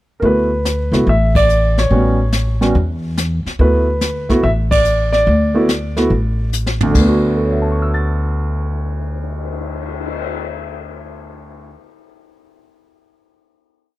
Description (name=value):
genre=jazz piano trio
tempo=143 BPM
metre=4/4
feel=swing 68% on 8ths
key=D major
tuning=A4 = 440 Hz
part: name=warm grand piano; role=melody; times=0.2-12.1 s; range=D2 to A6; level=-17 LUFS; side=right 1 dB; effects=none
part: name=upright bass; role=bass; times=0.2-11.7 s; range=A1 to E2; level=-17 LUFS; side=equal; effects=none
part: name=jazz brush drum kit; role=drums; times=0.2-10.2 s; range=brushed snare drum, crash cymbal, cymbal swell, hi-hat, kick drum, ride cymbal, snare drum, toms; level=-22 LUFS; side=left 1 dB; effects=none
room=studio reverb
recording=dry, close 1970s-style studio recording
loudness=-14 LUFS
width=side -16 dB against mid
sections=0.0-0.2 pickup bar; 0.2-6.9 A section; 6.9-10.3 final chord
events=band accent 1.3, 4.6; drum fill 6.5-6.9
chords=0.2 D6; 1.9 A13; 3.6 D5; 6.9 D6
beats=| 0.23 0.65 1.07 1.49 | 1.91 2.33 2.75 3.17 | 3.59 4.01 4.43 4.85 | 5.27 5.69 6.11 6.53 | 6.95 7.37 7.79 8.21 | 8.63 9.05 9.47 9.89